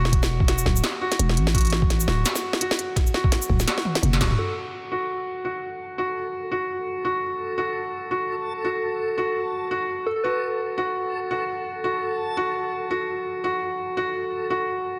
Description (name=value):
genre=half-time drum and bass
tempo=169 BPM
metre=4/4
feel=swing 56% on 16ths, half-time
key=F# minor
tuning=A4 = 440 Hz
part: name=felt-muted upright piano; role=arpeggios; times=0.0-15.0 s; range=F#4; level=-29 LUFS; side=equal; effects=low-pass filter, digital delay
part: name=growling 808-style bass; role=bass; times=0.0-4.4 s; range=D1 to A1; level=-24 LUFS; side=equal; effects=none
part: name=electronic kick drum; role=drums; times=0.1-4.3 s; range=none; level=-23 LUFS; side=equal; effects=overdrive
part: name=industrial drum kit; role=drums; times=0.1-4.5 s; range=crash cymbal, hi-hat, shaker, snare drum, toms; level=-28 LUFS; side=equal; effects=low-pass filter on snare, low-pass filter on hats, low-pass filter on perc, low-pass filter on toms, low-pass filter on cymbals
part: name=soft struck synth lead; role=melody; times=4.4-4.5, 10.1-10.6 s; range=A4 to B4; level=-32 LUFS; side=equal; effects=chorus, digital delay
part: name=backwards swelling texture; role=texture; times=6.1-15.0 s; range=A4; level=-35 LUFS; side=equal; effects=built-in reverb
room=moderate echo chamber reverb, RT60 2.0 s, digital ambience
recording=dense, heavily limited modern master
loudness=-25 LUFS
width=mono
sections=0.0-4.4 A section; 4.4-15.0 B section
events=drop 0.0-4.4; drum fill 3.9-4.4; band accent 4.2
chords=0.0 Dadd9; 4.4 F#m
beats=| 0.12 0.48 0.83 1.19 | 1.54 1.90 2.25 2.61 | 2.96 3.32 3.67 4.03 | 4.38 4.74 5.09 5.45 | 5.80 6.16 6.51 6.87 | 7.22 7.58 7.93 8.29 | 8.64 9.00 9.36 9.71 | 10.06 10.42 10.78 11.13 | 11.48 11.84 12.20 12.55 | 12.90 13.26 13.62 13.97 | 14.32 14.68